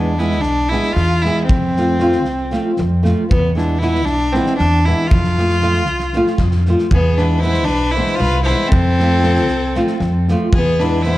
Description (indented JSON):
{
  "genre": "balkan folk, Balkan wedding band",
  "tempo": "232 BPM (eighths)",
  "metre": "7/8",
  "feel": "straight",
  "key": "E phrygian dominant",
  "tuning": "A4 = 440 Hz",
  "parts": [
    { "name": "clear fiddle", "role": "melody", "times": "0.0-11.2 s", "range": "B3 to F4", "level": "-19 LUFS", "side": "equal", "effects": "none" },
    { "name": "flamenco guitar", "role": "accompaniment", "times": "0.0-11.2 s", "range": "E3 to G#4", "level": "-20 LUFS", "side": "equal", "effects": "none" },
    { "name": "upright bass", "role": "bass", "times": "0.0-11.2 s", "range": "B1 to F2", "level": "-17 LUFS", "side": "equal", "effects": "none" },
    { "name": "gated 80s drum kit", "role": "percussion", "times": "0.2-11.2 s", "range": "kick drum, snare drum", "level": "-19 LUFS", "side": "equal", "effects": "none" },
    { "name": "clear violin", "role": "second line", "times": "6.9-11.2 s", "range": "G#4 to C5", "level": "-24 LUFS", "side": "left 3 dB", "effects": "none" }
  ],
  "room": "light reverb",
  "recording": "dark, warm production",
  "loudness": "-13 LUFS",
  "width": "side -16 dB against mid",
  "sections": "0.0-11.2 A section",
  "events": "none",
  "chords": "0.0 E; 1.5 F; 3.3 E; 5.1 F; 6.9 E; 8.7 F; 10.5 E"
}